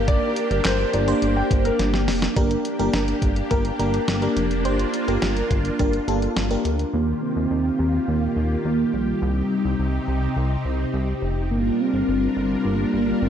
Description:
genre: synth-pop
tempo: 105 BPM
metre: 4/4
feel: straight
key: G minor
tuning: A4 = 440 Hz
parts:
  - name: soft octave-layered synth lead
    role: melody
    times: 0.0-1.8, 6.9-13.3 s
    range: G3 to Bb4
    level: -24 LUFS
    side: equal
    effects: chorus, phaser, ping-pong delay
  - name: FM electric piano with soft pad layer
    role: accompaniment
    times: 0.0-6.7 s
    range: Bb3 to C5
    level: -26 LUFS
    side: equal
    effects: chorus, phaser
  - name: string machine, violas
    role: sustained chords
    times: 0.0-13.3 s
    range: C3 to Bb4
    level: -26 LUFS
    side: equal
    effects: phaser, ensemble chorus
  - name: chorused synth bass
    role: bass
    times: 0.0-13.3 s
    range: F1 to Eb2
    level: -24 LUFS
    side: equal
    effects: none
  - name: warm concert grand piano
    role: second line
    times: 0.1-1.8 s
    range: Bb4 to G5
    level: -27 LUFS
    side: left 2 dB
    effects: ping-pong delay
  - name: clean 12-bit digital drum machine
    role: drums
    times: 0.1-6.9 s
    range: handclaps, hi-hat, kick drum, snare drum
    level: -25 LUFS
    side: equal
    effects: none
room: moderate lush hall reverb, RT60 2.1 s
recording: dreamy mix soaked in reverb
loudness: -20 LUFS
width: side -9 dB against mid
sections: 0.0-2.4 A section; 2.4-6.9 B section; 6.9-13.3 C section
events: drum fill 1.8-2.4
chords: 0.0 Gm; 6.9 Ebadd9; 9.2 Cm; 11.5 Gm7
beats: | 0.08 0.65 1.22 1.79 | 2.37 2.94 3.51 4.08 | 4.65 5.22 5.79 6.37 | 6.94 7.51 8.08 8.65 | 9.22 9.79 10.37 10.94 | 11.51 12.08 12.65 13.22

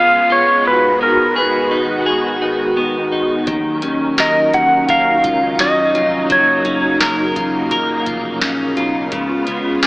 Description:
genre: dream pop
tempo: 85 BPM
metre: 4/4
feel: straight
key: Eb minor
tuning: A4 = 439 Hz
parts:
  - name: clean lap steel guitar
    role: melody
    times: 0.0-7.0 s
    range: Bb4 to Gb5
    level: -14 LUFS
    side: equal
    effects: none
  - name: string machine, violas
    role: sustained chords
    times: 0.0-9.9 s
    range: Db3 to Gb4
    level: -19 LUFS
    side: equal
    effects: phaser, ensemble chorus
  - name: clean electric guitar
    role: arpeggios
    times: 0.0-9.9 s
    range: Ab2 to Bb4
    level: -20 LUFS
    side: left 1 dB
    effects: wide subtle chorus, tape echo
  - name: picked electric bass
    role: bass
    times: 3.5-9.9 s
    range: F1 to Gb2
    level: -28 LUFS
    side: equal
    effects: none
  - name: booming analog drum machine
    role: drums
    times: 3.5-9.9 s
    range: hi-hat, kick drum, snare drum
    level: -20 LUFS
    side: equal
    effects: none
room: wet lush hall reverb, RT60 2.9 s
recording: AM radio sound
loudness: -13 LUFS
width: side -25 dB against mid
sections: 0.0-9.9 A section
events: none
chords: 0.0 Db7; 0.7 Abm7; 3.5 Ebm9; 6.3 Gbmaj7; 9.1 Db7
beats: | 0.65 1.36 2.06 2.77 | 3.47 4.18 4.89 5.59 | 6.30 7.00 7.71 8.42 | 9.12 9.83

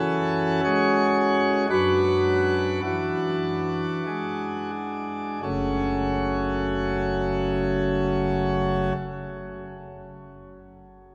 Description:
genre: classical, chorale-style piece for pipe organ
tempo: 42-60 BPM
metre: 3/4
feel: straight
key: F# minor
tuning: A4 = 444 Hz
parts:
  - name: pipe organ, plenum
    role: solo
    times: 0.0-8.9 s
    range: F#1 to C#5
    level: -25 LUFS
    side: equal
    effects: none
room: wet cathedral reverb, RT60 5.9 s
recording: none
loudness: -24 LUFS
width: mono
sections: 0.0-5.4 A section; 5.4-9.6 B section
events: slowing down 0.0-5.4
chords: 0.0 F#m; 1.7 Bm/F#; 5.4 F#m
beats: 0.64 | 1.70 2.83 4.07 | 5.43 6.82 8.22

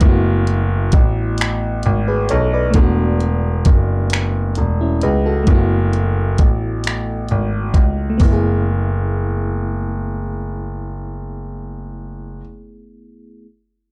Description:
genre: slow six-eight R&B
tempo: 44 BPM (dotted quarters)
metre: 6/8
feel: straight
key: F# minor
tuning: A4 = 440 Hz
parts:
  - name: FM electric piano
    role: accompaniment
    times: 0.0-13.4 s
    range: A3 to D5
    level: -25 LUFS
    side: equal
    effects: plate reverb
  - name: clear concert grand piano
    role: bass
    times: 0.0-12.4 s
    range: E1 to C#2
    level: -20 LUFS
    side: equal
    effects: none
  - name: smooth R&B drum kit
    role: drums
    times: 0.0-8.4 s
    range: finger snaps, hi-hat, kick drum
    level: -16 LUFS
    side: equal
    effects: vintage 12-bit sampler grit
room: little or no reverb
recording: dark, warm production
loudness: -17 LUFS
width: mono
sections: 0.0-8.2 A section; 8.2-10.9 B section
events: none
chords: 0.0 F#m11; 2.7 E7sus4; 5.5 F#m11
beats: | 0.02 1.38 | 2.75 4.11 | 5.47 6.84 | 8.20 9.56

